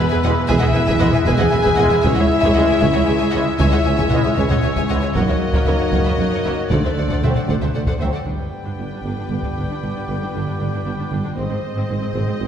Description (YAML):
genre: cinematic, epic orchestral film score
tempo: 77 BPM (dotted quarters)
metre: 12/8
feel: straight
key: unclear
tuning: A4 = 440 Hz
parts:
  - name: warm symphonic violin section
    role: melody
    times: 0.0-12.5 s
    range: B4 to G#5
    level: -28 LUFS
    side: left 4 dB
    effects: none
  - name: warm studio violin section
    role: second line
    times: 0.0-12.5 s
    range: B4 to G#5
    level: -28 LUFS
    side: left 2 dB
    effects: none
  - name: warm symphonic viola section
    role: accompaniment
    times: 0.0-12.5 s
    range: C4 to C#5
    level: -28 LUFS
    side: right 2 dB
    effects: none
  - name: dark French horn section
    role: sustained chords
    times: 0.0-12.5 s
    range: G3 to G#4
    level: -22 LUFS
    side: left 2 dB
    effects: none
  - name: mellow woodwind section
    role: sustained chords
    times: 0.0-12.5 s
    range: G#3 to G5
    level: -26 LUFS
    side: equal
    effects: none
  - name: mellow tuba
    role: bass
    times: 0.0-12.5 s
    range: E1 to D2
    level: -26 LUFS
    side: right 2 dB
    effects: none
  - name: rich symphonic cello section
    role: bass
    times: 0.0-12.5 s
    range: C#2 to Ab2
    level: -25 LUFS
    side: right 2 dB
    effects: none
  - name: warm symphonic double bass section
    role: bass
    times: 0.0-12.5 s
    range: E1 to D2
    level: -25 LUFS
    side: right 1 dB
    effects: none
  - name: warm trombone section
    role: sustained chords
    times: 0.2-8.1 s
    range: E3 to C4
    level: -29 LUFS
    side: right 1 dB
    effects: none
  - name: taiko ensemble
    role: drums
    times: 0.5-9.7 s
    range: none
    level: -22 LUFS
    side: equal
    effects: none
room: wet scoring stage reverb, RT60 1.8 s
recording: heard from further back in the room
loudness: -16 LUFS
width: side -8 dB against mid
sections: 0.0-8.3 A section; 8.3-12.5 B section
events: none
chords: 0.0 E; 2.1 C#m; 5.2 F#; 6.7 D7; 8.3 G; 11.4 Ab